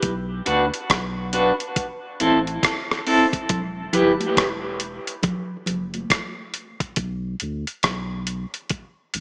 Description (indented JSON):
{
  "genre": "dub reggae",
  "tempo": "69 BPM",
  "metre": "4/4",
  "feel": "swing 62% on 16ths",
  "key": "E minor",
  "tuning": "A4 = 440 Hz",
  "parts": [
    { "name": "warm sub bass", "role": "bass", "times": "0.0-9.2 s", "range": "E1 to D2", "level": "-30 LUFS", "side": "equal", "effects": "none" },
    { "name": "dusty soul sampler-style drum kit", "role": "drums", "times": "0.0-9.2 s", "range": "hi-hat, kick drum, rim click", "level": "-22 LUFS", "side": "equal", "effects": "none" },
    { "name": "clean electric guitar", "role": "accompaniment", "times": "0.5-4.1 s", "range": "C4 to B4", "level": "-21 LUFS", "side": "equal", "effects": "tremolo, dub echo" },
    { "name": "congas", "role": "percussion", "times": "3.5-6.1 s", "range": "none", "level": "-28 LUFS", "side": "equal", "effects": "dub echo" }
  ],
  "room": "moderate echo chamber reverb, RT60 2.1 s",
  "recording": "echo-heavy mix, small speaker sound",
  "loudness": "-20 LUFS",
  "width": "side -29 dB against mid",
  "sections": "0.0-9.2 A section",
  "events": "break 0.0-3.5, 3.5-9.2; part muted 7.0-9.2",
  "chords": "0.0 Bm; 1.8 Am; 3.5 Em; 7.0 Bm"
}